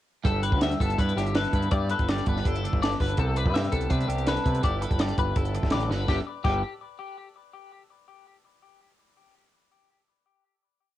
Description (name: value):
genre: math rock and midwest emo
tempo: 165 BPM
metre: 4/4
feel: straight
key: G major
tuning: A4 = 440 Hz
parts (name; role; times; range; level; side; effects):
- twelve-string electric guitar; accompaniment; 0.2-6.6 s; G2 to B4; -33 LUFS; right 8 dB; cassette tape
- growling picked electric bass; bass; 0.2-6.6 s; G1 to C3; -28 LUFS; equal; overdrive
- compact cocktail drum kit; drums; 0.2-6.5 s; crash cymbal, hi-hat, kick drum, snare drum; -27 LUFS; equal; cassette tape
- twelve-string electric guitar; arpeggios; 0.3-6.6 s; G4 to E5; -31 LUFS; left 7 dB; lush chorus, cassette tape, tape echo
room: little or no reverb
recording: home recording on cassette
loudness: -23 LUFS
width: side -13 dB against mid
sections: 0.2-6.1 A section; 6.1-7.5 final chord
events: drum fill 5.9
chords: 0.2 G69; 3.2 Cmaj9; 4.6 G69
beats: | 0.25 0.61 0.98 1.35 | 1.71 2.08 2.44 2.81 | 3.17 3.54 3.90 4.27 | 4.63 5.00 5.36 5.72 | 6.08 6.45